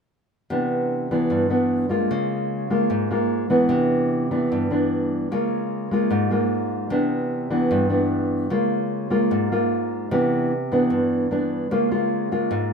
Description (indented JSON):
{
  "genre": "bossa nova",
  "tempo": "150 BPM",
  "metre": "4/4",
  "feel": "straight",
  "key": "unclear",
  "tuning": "A4 = 441 Hz",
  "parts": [
    { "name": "nylon-string guitar", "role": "accompaniment", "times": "0.5-12.7 s", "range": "G2 to F4", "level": "-20 LUFS", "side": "equal", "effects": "none" }
  ],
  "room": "light reverb",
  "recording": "close, detailed microphones",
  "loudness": "-20 LUFS",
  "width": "side -5 dB against mid",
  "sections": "0.5-12.7 A section",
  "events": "none",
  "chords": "0.5 Cmaj9; 2.1 Db6; 3.7 Cmaj9; 5.3 Db6; 6.9 Cmaj9; 8.5 Db6; 10.1 Cmaj9; 11.7 Db6",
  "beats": "| 0.50 0.90 1.30 1.70 | 2.10 2.50 2.90 3.31 | 3.71 4.11 4.51 4.91 | 5.31 5.71 6.11 6.51 | 6.91 7.31 7.71 8.11 | 8.51 8.91 9.31 9.71 | 10.11 10.51 10.91 11.31 | 11.71 12.11 12.51"
}